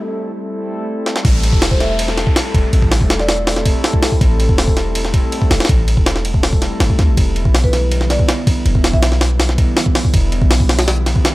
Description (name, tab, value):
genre	drum and bass, jungle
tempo	162 BPM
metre	4/4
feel	straight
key	A minor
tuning	A4 = 440 Hz
part	warbly tape-like pad	sustained chords	0.0-11.3 s	D3 to A4	-22 LUFS	equal	chorus, built-in reverb, vintage 12-bit sampler grit
part	jungle sampler-style drum kit	drums	1.1-11.3 s	hi-hat, kick drum, ride cymbal, snare drum	-14 LUFS	equal	high-pass filter on kick, studio reverb, high-pass filter on cymbals, high-pass filter on snare, high-pass filter on hats
part	warm 808-style bass	bass	1.2-11.1 s	E1 to D2	-16 LUFS	equal	tube saturation
part	downlifter	sound effects	1.2-4.2 s	none	-29 LUFS	equal	none
part	marimba with soft mallets	melody	1.7-3.3, 7.6-9.2 s	B4 to E5	-23 LUFS	equal	dub echo
room	little or no reverb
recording	dry, gritty hardware recording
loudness	-12 LUFS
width	side -18 dB against mid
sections	0.0-1.2 A section; 1.2-11.3 B section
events	break 0.0-1.2; build-up 0.0-1.2; filter sweep on ambient pad 0.0-1.2; drum fill 1.1; drop 1.2-11.3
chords	0.0 Am7; 7.2 Em7